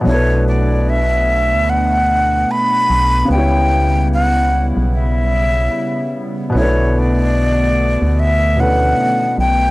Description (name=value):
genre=lo-fi hip hop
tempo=74 BPM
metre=4/4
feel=swing 62% on 16ths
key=B minor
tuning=A4 = 440 Hz
part: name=felt-muted upright piano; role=accompaniment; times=0.0-9.7 s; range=B2 to C#5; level=-20 LUFS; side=left 1 dB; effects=cassette tape
part: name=hollow soft pad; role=sustained chords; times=0.0-9.7 s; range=C#3 to E4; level=-23 LUFS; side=right 1 dB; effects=chorus
part: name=breathy jazz flute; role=melody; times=0.1-9.7 s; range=C#5 to B5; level=-17 LUFS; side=equal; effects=none
part: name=organ-like FM bass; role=bass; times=0.1-9.7 s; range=B1 to D2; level=-16 LUFS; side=equal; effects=tube saturation
room=light reverb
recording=dry, gritty hardware recording, transformer saturation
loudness=-13 LUFS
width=side -19 dB against mid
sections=0.1-9.7 A section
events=none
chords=0.1 Bm7; 3.3 C#m7b5; 6.5 Bm11